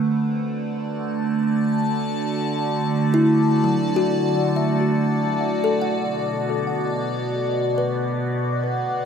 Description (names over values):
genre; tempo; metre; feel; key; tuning
ambient; 71 BPM; 4/4; straight; unclear; A4 = 440 Hz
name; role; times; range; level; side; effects
evolving wavetable pad; sustained chords; 0.0-9.1 s; B2 to A5; -21 LUFS; right 1 dB; phaser, built-in reverb
kalimba; arpeggios; 3.1-9.1 s; F#3 to F#5; -24 LUFS; left 3 dB; ping-pong delay
room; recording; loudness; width
wet cathedral reverb, RT60 6.4 s; none; -19 LUFS; side -7 dB against mid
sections
0.0-9.1 A section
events
none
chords
0.0 D; 5.6 Bm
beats
0.56 1.41 | 2.25 3.10 3.94 4.78 | 5.61 6.46 7.31 8.16 | 9.01